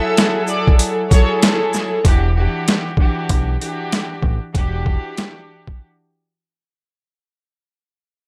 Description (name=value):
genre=hip hop, boom-bap hip-hop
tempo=96 BPM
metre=4/4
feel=swing 59% on 16ths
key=E minor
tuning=A4 = 445 Hz
part: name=bright studio violin section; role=melody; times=0.0-1.3 s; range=C#5 to E6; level=-28 LUFS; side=equal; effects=high-pass filter, low-pass filter, delay
part: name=dark chamber string section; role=accompaniment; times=0.0-5.8 s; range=E3 to A4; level=-23 LUFS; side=equal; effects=cassette tape, high-pass filter, low-pass filter
part: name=warm horn section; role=stabs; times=0.0-1.7 s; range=A4 to F#5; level=-33 LUFS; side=equal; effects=high-pass filter, low-pass filter, delay
part: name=boom bap sampler-style drum kit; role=drums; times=0.2-5.8 s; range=hi-hat, kick drum, shaker, snare drum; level=-18 LUFS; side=equal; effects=overdrive
part: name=deep dub picked electric bass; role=bass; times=2.0-5.0 s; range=E1 to B1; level=-21 LUFS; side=equal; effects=none
room=little or no reverb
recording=none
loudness=-17 LUFS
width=mono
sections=0.0-2.0 A section; 2.0-7.0 B section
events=break 0.0-2.0, 5.8-7.0; fade-out 2.0-7.0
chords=0.0 F#m9; 2.0 Em9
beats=0.17 0.80 1.42 | 2.05 2.67 3.30 3.92 | 4.55 5.17 5.80